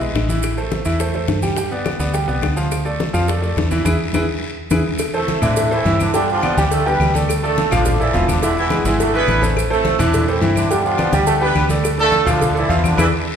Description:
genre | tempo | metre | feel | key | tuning
latin, salsa | 210 BPM | 4/4 | straight | A minor | A4 = 441 Hz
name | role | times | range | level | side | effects
bright baby grand piano | accompaniment | 0.0-13.1 s | E3 to G5 | -21 LUFS | right 1 dB | none
fingered electric bass | bass | 0.0-13.1 s | E1 to A2 | -21 LUFS | equal | none
bongos and cowbell | percussion | 0.0-13.1 s | none | -26 LUFS | left 4 dB | none
congas | percussion | 0.0-13.0 s | none | -24 LUFS | left 1 dB | none
maracas | percussion | 0.0-13.1 s | none | -34 LUFS | right 7 dB | none
guiro | percussion | 0.1-13.1 s | none | -33 LUFS | left 4 dB | none
claves | percussion | 0.2-13.0 s | none | -32 LUFS | left 5 dB | none
dark horn section | melody | 5.1-13.1 s | D3 to B4 | -19 LUFS | right 2 dB | none
room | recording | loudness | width
wet recital hall reverb, RT60 1.4 s | recorded in a church or concert hall | -15 LUFS | side -8 dB against mid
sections
0.0-5.0 A section; 5.0-13.4 B section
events
band accent 3.9-5.0, 13.0-13.4; drum fill 4.4-5.0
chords
0.4 Am; 1.6 G; 2.7 Dm; 3.9 E; 5.0 Am; 6.1 G; 7.3 Dm; 8.4 E7; 9.6 Am; 10.7 G; 11.8 Dm

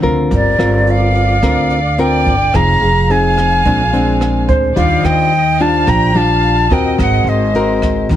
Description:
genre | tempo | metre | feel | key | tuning
bossa nova | 108 BPM | 4/4 | straight | G minor | A4 = 443 Hz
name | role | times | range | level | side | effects
nylon-string guitar | accompaniment | 0.0-8.2 s | Bb2 to A#4 | -16 LUFS | left 2 dB | none
upright bass | bass | 0.0-8.2 s | F1 to Eb2 | -16 LUFS | right 1 dB | none
rich symphonic violin section | second line | 0.3-8.1 s | Bb4 to G5 | -24 LUFS | equal | none
jazz brush drum kit | drums | 0.3-8.2 s | hi-hat, kick drum, rim click | -21 LUFS | right 1 dB | none
silver concert flute | melody | 0.4-8.1 s | D5 to Bb5 | -15 LUFS | equal | none
warm grand piano | accompaniment | 0.6-7.0 s | Ab4 to D5 | -24 LUFS | right 4 dB | none
room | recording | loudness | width
light reverb | heavily compressed radio sound | -10 LUFS | side -11 dB against mid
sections
0.3-8.2 A section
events
drum fill 0.0-0.3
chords
0.3 Gm7; 2.5 Fm7; 3.7 Bb9; 4.8 Ebmaj9; 7.0 Ab9

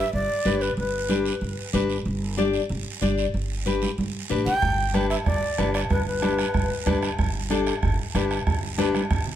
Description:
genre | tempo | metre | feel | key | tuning
latin, cumbia | 187 BPM | 4/4 | straight | G major | A4 = 439 Hz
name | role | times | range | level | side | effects
breathy bright long shakuhachi | melody | 0.0-1.7, 4.5-7.0 s | B4 to G5 | -26 LUFS | equal | none
nylon-string guitar | accompaniment | 0.0-9.0 s | D4 to D5 | -27 LUFS | left 5 dB | none
upright bass | bass | 0.1-9.2 s | G1 to A1 | -29 LUFS | right 1 dB | none
congas | percussion | 0.1-9.3 s | none | -30 LUFS | right 3 dB | none
guiro | percussion | 0.1-9.4 s | none | -36 LUFS | right 7 dB | none
bombo | percussion | 4.6-9.3 s | none | -26 LUFS | right 2 dB | none
room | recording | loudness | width
moderate stone room reverb, RT60 1.1 s | band playing live in one room | -22 LUFS | side -11 dB against mid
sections
0.0-9.4 A section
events
drum fill 3.7-4.6, 8.8-9.4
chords
0.0 G

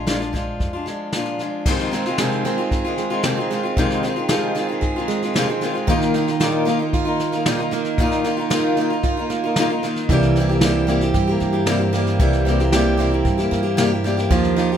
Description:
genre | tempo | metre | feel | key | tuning
acoustic folk duo or small band | 114 BPM | 4/4 | straight | unclear | A4 = 441 Hz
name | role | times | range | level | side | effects
picked steel-string acoustic guitar | accompaniment | 0.0-14.8 s | F2 to G4 | -21 LUFS | left 3 dB | none
upright bass | bass | 0.0-0.9, 10.1-14.8 s | Bb1 to G2 | -22 LUFS | equal | none
vintage brush drum kit | drums | 0.1-14.6 s | crash cymbal, kick drum, snare drum | -24 LUFS | equal | none
picked plugged-in steel-string acoustic guitar | arpeggios | 1.7-14.8 s | Eb3 to Ab4 | -22 LUFS | right 7 dB | none
room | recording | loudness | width
light reverb | none | -17 LUFS | side -8 dB against mid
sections
0.0-1.7 A section; 1.7-14.8 B section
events
none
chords
0.0 Bb7; 1.7 Fm7; 5.9 Bbsus4; 10.1 C7

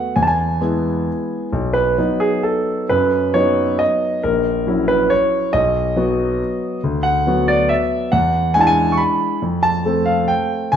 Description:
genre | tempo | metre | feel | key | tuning
classical, piano waltz | 129-145 BPM | 3/4 | rubato | unclear | A4 = 440 Hz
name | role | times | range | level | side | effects
warm concert grand piano | solo | 0.0-10.8 s | A#1 to C#6 | -15 LUFS | equal | none
room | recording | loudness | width
moderate recital hall reverb, RT60 1.5 s | dark, warm production, nothing above 10.6 kHz | -15 LUFS | side -8 dB against mid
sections
0.0-10.8 A section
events
none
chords
0.2 E; 1.5 B; 4.3 F#7/A#; 5.5 B; 6.8 Bm/D; 8.1 E7; 9.4 F

